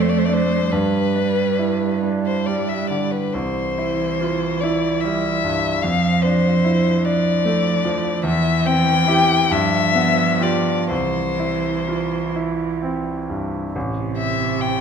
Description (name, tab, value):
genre	classical, slow romantic movement for piano trio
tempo	40-50 BPM (dotted quarters)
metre	6/8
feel	rubato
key	C major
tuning	A4 = 440 Hz
part	warm violin	melody	0.0-14.8 s	B4 to G5	-21 LUFS	left 6 dB	none
part	rich cello	second line	0.0-14.8 s	C3 to A3	-23 LUFS	right 7 dB	none
part	bright grand piano	accompaniment	0.0-14.8 s	A1 to D5	-21 LUFS	right 1 dB	none
room	wet recital hall reverb, RT60 1.7 s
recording	none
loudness	-17 LUFS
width	side -7 dB against mid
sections	0.0-13.8 A section; 13.8-14.8 B section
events	none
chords	0.0 Dm/F; 0.7 G; 3.3 C; 5.8 Dm/F; 8.2 C/E; 9.5 G7; 10.9 C; 13.8 Am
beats	| 0.71 2.03 | 3.33 4.61 | 5.82 7.03 | 8.23 9.50 | 10.89 12.35 | 13.75